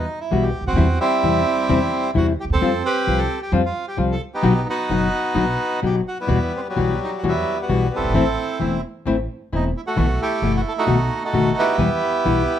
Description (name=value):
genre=tango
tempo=131 BPM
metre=4/4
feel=rubato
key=E harmonic minor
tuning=A4 = 440 Hz
part: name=bandoneon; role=melody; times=0.0-12.6 s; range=F#3 to B4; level=-21 LUFS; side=right 2 dB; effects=none
part: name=upright bass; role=bass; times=0.0-12.4 s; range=E1 to F2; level=-23 LUFS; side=right 1 dB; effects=none
part: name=nylon-string guitar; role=accompaniment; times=0.3-12.4 s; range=B2 to F#4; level=-20 LUFS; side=left 4 dB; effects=none
room=light reverb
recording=close, detailed microphones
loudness=-18 LUFS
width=side -10 dB against mid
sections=0.0-12.6 A section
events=none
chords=0.0 Emadd9; 0.8 C/E; 2.6 Fsus2; 4.4 B; 6.3 Emadd9; 8.2 Am; 10.0 B7sus4; 11.8 Em